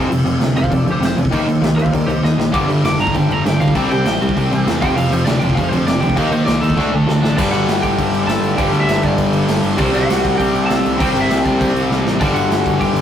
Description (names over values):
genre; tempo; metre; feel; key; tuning
punk rock; 198 BPM; 4/4; straight; unclear; A4 = 439 Hz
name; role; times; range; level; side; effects
crunchy overdriven guitar; riff; 0.0-13.0 s; F2 to Eb4; -18 LUFS; left 3 dB; none
overdriven semi-hollow guitar; riff; 0.0-13.0 s; F2 to Eb4; -21 LUFS; right 4 dB; none
picked electric bass; bass; 0.0-13.0 s; F1 to Eb3; -24 LUFS; equal; none
big rock drum kit; drums; 0.1-13.0 s; crash cymbal, kick drum, snare drum; -20 LUFS; right 1 dB; none
lightly driven lead guitar; melody; 0.6-13.0 s; D4 to D6; -22 LUFS; equal; none
heavy high-gain guitar; riff; 2.5-13.0 s; F2 to Eb4; -24 LUFS; equal; distortion
room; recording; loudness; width
moderate stone room reverb, RT60 1.1 s; rough rehearsal-room recording, warm saturation; -13 LUFS; side -9 dB against mid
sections
0.0-7.4 A section; 7.4-13.0 B section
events
lead electric guitar solo 0.0-7.4; drum fill 2.2-2.5, 6.8-7.4, 11.9-12.2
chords
0.0 F5; 1.3 Eb5; 2.5 G5; 3.7 C; 4.8 F5; 6.2 Eb5; 6.8 D5; 7.4 G5; 9.8 C5; 12.2 G5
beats
| 0.11 0.41 0.71 1.02 | 1.32 1.62 1.93 2.23 | 2.53 2.84 3.14 3.44 | 3.75 4.05 4.35 4.66 | 4.96 5.26 5.56 5.87 | 6.17 6.47 6.77 7.08 | 7.38 7.68 7.98 8.28 | 8.59 8.89 9.19 9.49 | 9.79 10.09 10.39 10.70 | 11.00 11.30 11.60 11.90 | 12.20 12.51 12.81